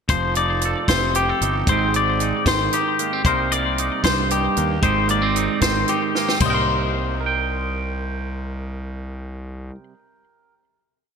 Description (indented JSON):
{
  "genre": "math rock and midwest emo",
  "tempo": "76 BPM (dotted quarters)",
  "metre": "6/8",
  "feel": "straight",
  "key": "C minor",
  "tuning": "A4 = 440 Hz",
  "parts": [
    { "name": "twangy electric guitar", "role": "accompaniment", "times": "0.1-10.6 s", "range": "G2 to G5", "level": "-24 LUFS", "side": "right 8 dB", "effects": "none" },
    { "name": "twangy electric guitar", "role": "arpeggios", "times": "0.1-9.8 s", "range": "G4 to C6", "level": "-22 LUFS", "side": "left 7 dB", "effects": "wide subtle chorus, ping-pong delay" },
    { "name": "fuzz fingered electric bass", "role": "bass", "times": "0.1-9.7 s", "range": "F1 to Eb2", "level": "-26 LUFS", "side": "equal", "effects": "overdrive" },
    { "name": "compact cocktail drum kit", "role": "drums", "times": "0.1-6.5 s", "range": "crash cymbal, hi-hat, kick drum, snare drum, toms", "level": "-23 LUFS", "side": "right 1 dB", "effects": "gated reverb" }
  ],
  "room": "moderate lush hall reverb, RT60 1.7 s, small room ambience",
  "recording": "bright 1980s-style digital production",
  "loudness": "-18 LUFS",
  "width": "side -6 dB against mid",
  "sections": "0.1-6.4 A section; 6.4-9.6 final chord",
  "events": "drum fill 6.1",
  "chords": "0.1 F7; 1.7 Abmaj7; 3.3 Cm7; 4.8 Abmaj7; 6.4 Cm7",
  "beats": "| 0.09 0.88 | 1.67 2.46 | 3.25 4.04 | 4.83 5.62 | 6.41 7.21 | 8.00 8.79"
}